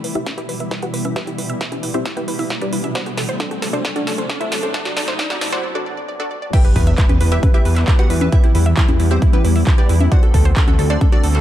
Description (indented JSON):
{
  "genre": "uplifting trance",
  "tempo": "134 BPM",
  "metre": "4/4",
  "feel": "straight",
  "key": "E minor",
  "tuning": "A4 = 440 Hz",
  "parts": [
    { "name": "wide unison pluck", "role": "melody", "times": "0.0-11.4 s", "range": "B3 to A5", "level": "-25 LUFS", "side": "equal", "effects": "sidechain pumping, dub echo" },
    { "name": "wide unison pluck", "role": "arpeggios", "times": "0.0-11.4 s", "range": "D4 to E5", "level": "-29 LUFS", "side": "right 3 dB", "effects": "sidechain pumping, dub echo" },
    { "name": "big-room dance drum kit", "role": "drums", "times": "0.0-11.4 s", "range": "congas, crash cymbal, handclaps, hi-hat, snare drum", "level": "-25 LUFS", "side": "left 1 dB", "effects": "high-pass filter on snare, studio reverb, sidechain pumping on hats, high-pass filter on hats, sidechain pumping on perc, high-pass filter on perc, sidechain pumping on cymbals, high-pass filter on cymbals" },
    { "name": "riser and impact", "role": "sound effects", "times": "1.3-8.3 s", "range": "none", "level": "-30 LUFS", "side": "equal", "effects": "none" },
    { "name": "electronic kick drum", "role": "drums", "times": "0.3-11.1 s", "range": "none", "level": "-14 LUFS", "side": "equal", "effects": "high-pass filter on kick, studio reverb" },
    { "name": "plucky unison lead", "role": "second line", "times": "6.5-11.4 s", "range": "E4 to G5", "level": "-29 LUFS", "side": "equal", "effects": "phaser, sidechain pumping, dub echo" },
    { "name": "fat analog bass", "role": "bass", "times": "6.8-11.4 s", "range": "D2 to E2", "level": "-15 LUFS", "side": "equal", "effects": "sidechain pumping" }
  ],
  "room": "little or no reverb",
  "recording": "dark, warm production, high-pass filter",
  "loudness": "-15 LUFS",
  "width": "side -12 dB against mid",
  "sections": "0.0-6.5 A section; 6.5-11.4 B section",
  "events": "build-up 0.0-6.5; drum fill 0.0-5.6; filter sweep on synth pluck 0.0-6.5; filter sweep on synth arpeggio sound 0.0-6.5; filter sweep 0.0-6.5; riser 1.3-5.6; break 5.6-6.5; drop 6.5-11.4; impact 6.5-8.3",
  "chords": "0.0 Em; 3.0 D7; 6.5 Em; 10.1 D7"
}